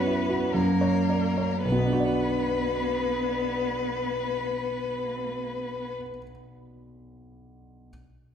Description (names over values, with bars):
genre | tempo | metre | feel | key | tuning
classical, slow romantic movement for piano trio | 58 BPM | 3/4 | rubato | B minor | A4 = 442 Hz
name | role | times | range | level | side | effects
rich violin | melody | 0.0-5.9 s | A#4 to B4 | -30 LUFS | left 4 dB | none
rich cello | second line | 0.0-5.9 s | A#3 to B3 | -32 LUFS | right 2 dB | none
warm concert grand piano | accompaniment | 0.0-7.9 s | B1 to D5 | -28 LUFS | right 1 dB | none
room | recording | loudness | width
wet scoring stage reverb, RT60 1.7 s | heard from further back in the room | -24 LUFS | side -8 dB against mid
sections
0.0-1.6 A section; 1.6-7.9 B section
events
slowing down 0.0-1.6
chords
0.0 F#7sus4; 0.5 F#; 1.6 Bm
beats
0.54 | 1.64 2.67 3.70 | 4.75 5.80 6.84